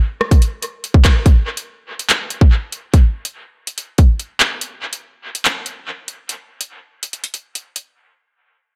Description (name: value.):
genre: hip hop.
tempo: 143 BPM.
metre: 4/4.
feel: half-time.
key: none.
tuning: none.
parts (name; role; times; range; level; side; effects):
drill drum kit; drums; 0.2-7.9 s; handclaps, hi-hat, kick drum, rim click; -15 LUFS; equal; dub echo.
room: digital ambience.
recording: echo-heavy mix.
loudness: -16 LUFS.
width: mono.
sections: 0.0-1.3 A section; 1.3-8.0 B section.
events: none.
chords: none.